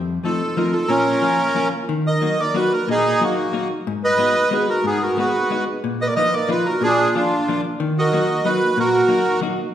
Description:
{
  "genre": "musette waltz",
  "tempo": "183 BPM",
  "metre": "3/4",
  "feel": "straight",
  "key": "Eb harmonic minor",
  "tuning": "A4 = 439 Hz",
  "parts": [
    { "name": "vintage hollow-body jazz guitar", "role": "accompaniment", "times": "0.0-9.6 s", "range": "F2 to Gb4", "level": "-23 LUFS", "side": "left 3 dB", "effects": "none" },
    { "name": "bandoneon", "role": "melody", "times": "0.2-9.4 s", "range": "Bb3 to Eb5", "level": "-19 LUFS", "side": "right 2 dB", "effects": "none" },
    { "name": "mellow clarinet", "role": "second line", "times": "0.2-9.4 s", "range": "D4 to Cb5", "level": "-23 LUFS", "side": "right 1 dB", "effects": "none" }
  ],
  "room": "wet recital hall reverb, RT60 1.5 s",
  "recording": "recorded in a church or concert hall",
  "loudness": "-17 LUFS",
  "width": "side -10 dB against mid",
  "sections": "0.0-1.9 A section; 1.9-9.7 B section",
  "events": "none",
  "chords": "0.0 F7; 0.9 Bbm; 1.9 Ebm; 3.9 Abm7; 5.8 Bbsus4; 6.8 Bb; 7.8 Ebm",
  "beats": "0.26 0.58 | 0.91 1.24 1.57 | 1.90 2.23 2.56 | 2.88 3.21 3.54 | 3.86 4.19 4.52 | 4.84 5.17 5.50 | 5.83 6.17 6.50 | 6.82 7.15 7.48 | 7.80 8.13 8.45 | 8.78 9.10 9.43"
}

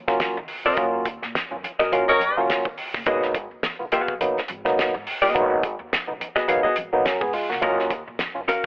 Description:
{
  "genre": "funk",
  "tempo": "105 BPM",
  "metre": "4/4",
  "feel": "swing 56% on 16ths",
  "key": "G# dorian",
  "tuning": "A4 = 439 Hz",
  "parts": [
    { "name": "upright bass", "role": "bass", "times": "0.0-8.5 s", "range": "F#1 to D#3", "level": "-34 LUFS", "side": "equal", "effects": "none" },
    { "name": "mellow clav", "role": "stabs", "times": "0.1-8.6 s", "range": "F#3 to A#4", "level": "-22 LUFS", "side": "equal", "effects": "none" },
    { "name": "cloth-damped thuddy drum kit", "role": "drums", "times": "0.1-8.6 s", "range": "hi-hat, kick drum, snare drum", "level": "-26 LUFS", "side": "equal", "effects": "none" },
    { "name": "congas", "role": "percussion", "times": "0.2-8.6 s", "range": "none", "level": "-45 LUFS", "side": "right 1 dB", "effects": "none" },
    { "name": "vintage hollow-body jazz guitar", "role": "accompaniment", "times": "0.7-8.6 s", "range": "B3 to E#5", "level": "-21 LUFS", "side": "left 1 dB", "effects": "none" },
    { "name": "warm horn section", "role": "second line", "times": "2.1-2.4 s", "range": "C#4 to C#5", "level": "-21 LUFS", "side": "equal", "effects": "none" }
  ],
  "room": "light reverb",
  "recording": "telephone sound",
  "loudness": "-20 LUFS",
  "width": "side -24 dB against mid",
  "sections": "0.0-8.7 A section",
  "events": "band accent 0.8-3.1",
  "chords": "0.0 D#m7; 3.1 G#m7; 7.6 D#m7",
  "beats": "0.20 | 0.78 1.35 1.92 2.49 | 3.06 3.63 4.20 4.78 | 5.34 5.92 6.49 7.06 | 7.63 8.20"
}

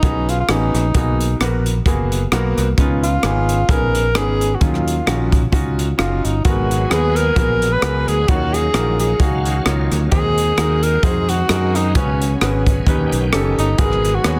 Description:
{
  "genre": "uptempo gospel",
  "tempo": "131 BPM",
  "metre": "4/4",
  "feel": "swing 56% on 8ths",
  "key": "unclear",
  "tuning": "A4 = 440 Hz",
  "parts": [
    { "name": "breathy tenor saxophone", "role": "melody", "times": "0.0-14.4 s", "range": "C#4 to B4", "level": "-23 LUFS", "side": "equal", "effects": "none" },
    { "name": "bright upright piano", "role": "accompaniment", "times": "0.0-14.4 s", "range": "G#2 to E#5", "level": "-25 LUFS", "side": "equal", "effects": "none" },
    { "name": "fingered electric bass", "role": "bass", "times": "0.0-14.4 s", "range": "F#1 to F#2", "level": "-22 LUFS", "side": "equal", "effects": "none" },
    { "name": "crisp fusion drum kit", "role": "drums", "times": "0.0-14.4 s", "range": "hi-hat, kick drum, rim click", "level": "-22 LUFS", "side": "equal", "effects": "soft clipping on snare" },
    { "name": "bright tonewheel organ", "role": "sustained chords", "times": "6.5-14.4 s", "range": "D#3 to E#5", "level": "-30 LUFS", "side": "equal", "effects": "slow rotary speaker, chorus vibrato" }
  ],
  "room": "light reverb, studio reverb",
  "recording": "dense, heavily limited modern master",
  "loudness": "-17 LUFS",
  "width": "mono",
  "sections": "0.0-14.4 A section",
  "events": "none",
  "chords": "0.0 C#7sus4; 0.9 G#m9; 2.8 C#9; 4.6 D#m9; 6.5 G#m9; 8.3 D#m9; 10.1 G#7/D#; 12.0 C#7sus4; 12.9 D#7alt; 13.8 G#m9",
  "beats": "0.03 0.49 | 0.95 1.40 1.86 2.32 | 2.78 3.24 3.70 4.16 | 4.62 5.07 5.53 5.99 | 6.45 6.91 7.37 7.83 | 8.29 8.75 9.21 9.66 | 10.12 10.58 11.04 11.50 | 11.96 12.41 12.87 13.33 | 13.79 14.24"
}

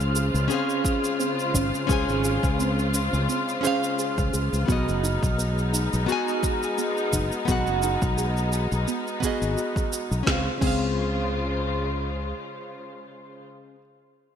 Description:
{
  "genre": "sunset chillout",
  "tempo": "86 BPM",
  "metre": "4/4",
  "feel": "swing 55% on 16ths",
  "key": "unclear",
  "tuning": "A4 = 439 Hz",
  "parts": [
    { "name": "nylon-string guitar", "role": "accompaniment", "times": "0.0-13.8 s", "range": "Cb4 to Ab5", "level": "-28 LUFS", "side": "moving between left 4 dB and right 4 dB", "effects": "auto-pan, digital delay" },
    { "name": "muted studio string section", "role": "sustained chords", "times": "0.0-13.4 s", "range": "Db3 to C5", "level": "-30 LUFS", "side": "left 2 dB", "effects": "none" },
    { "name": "soft round pluck", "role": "arpeggios", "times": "0.0-10.8 s", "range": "Cb4 to Ab4", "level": "-33 LUFS", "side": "right 2 dB", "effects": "chorus, digital delay" },
    { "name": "fretless electric bass", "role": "bass", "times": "0.0-12.3 s", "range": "Gb1 to Db2", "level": "-26 LUFS", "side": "equal", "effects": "none" },
    { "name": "smooth R&B drum kit", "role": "drums", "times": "0.0-10.8 s", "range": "crash cymbal, shaker, snare drum", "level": "-32 LUFS", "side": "right 2 dB", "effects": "gated reverb" },
    { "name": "wind-like tuned noise texture", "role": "texture", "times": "0.0-10.3 s", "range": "F6", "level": "-37 LUFS", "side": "right 1 dB", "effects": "built-in reverb, analog chorus" },
    { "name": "electronic kick drum", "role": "drums", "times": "0.8-10.8 s", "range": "none", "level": "-26 LUFS", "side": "equal", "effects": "overdrive" }
  ],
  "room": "moderate plate reverb, RT60 2.4 s",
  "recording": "bright 1980s-style digital production",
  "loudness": "-22 LUFS",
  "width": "side -8 dB against mid",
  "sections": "0.0-10.3 A section; 10.3-13.1 B section",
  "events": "filter sweep on synth pluck 0.0-10.3",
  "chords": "0.0 Dbmaj7; 4.7 Cb6; 10.3 Dbmaj7",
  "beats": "0.50 1.20 | 1.90 2.59 3.29 3.99 | 4.68 5.38 6.08 6.78 | 7.48 8.17 8.87 9.57 | 10.27 10.96 11.66 12.36"
}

